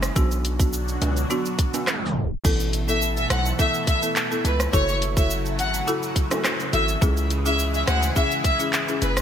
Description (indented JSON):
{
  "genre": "dancehall",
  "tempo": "105 BPM",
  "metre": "4/4",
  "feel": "straight",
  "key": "A major",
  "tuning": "A4 = 439 Hz",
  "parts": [
    { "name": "lush unison pad", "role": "sustained chords", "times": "0.0-9.2 s", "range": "B2 to A4", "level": "-30 LUFS", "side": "right 1 dB", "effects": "chorus, phaser, sidechain pumping" },
    { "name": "hard-hitting 808-style bass", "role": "bass", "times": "0.0-9.2 s", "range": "E1 to D2", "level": "-25 LUFS", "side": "equal", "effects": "none" },
    { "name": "island pop drum kit", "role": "drums", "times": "0.0-9.2 s", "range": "crash cymbal, handclaps, hi-hat, kick drum, rim click, shaker", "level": "-24 LUFS", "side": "equal", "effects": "gated reverb" },
    { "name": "tube shaker and timbales", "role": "percussion", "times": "0.0-9.2 s", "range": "none", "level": "-35 LUFS", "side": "right 2 dB", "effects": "none" },
    { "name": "folk marimba with medium mallets", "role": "accompaniment", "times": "0.2-9.1 s", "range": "B3 to A4", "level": "-28 LUFS", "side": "left 2 dB", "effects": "sidechain pumping" },
    { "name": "warm studio violin section", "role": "melody", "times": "2.9-9.1 s", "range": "B4 to F#5", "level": "-25 LUFS", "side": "left 1 dB", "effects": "digital delay" }
  ],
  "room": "light reverb, digital ambience",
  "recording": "bright 1980s-style digital production, tape stop",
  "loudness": "-20 LUFS",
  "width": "side -9 dB against mid",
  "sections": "0.0-2.4 A section; 2.4-9.2 B section",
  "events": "tape stop 1.9-2.4",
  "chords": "0.2 Bm; 2.4 Asus2; 4.7 F#m7; 7.0 C#m"
}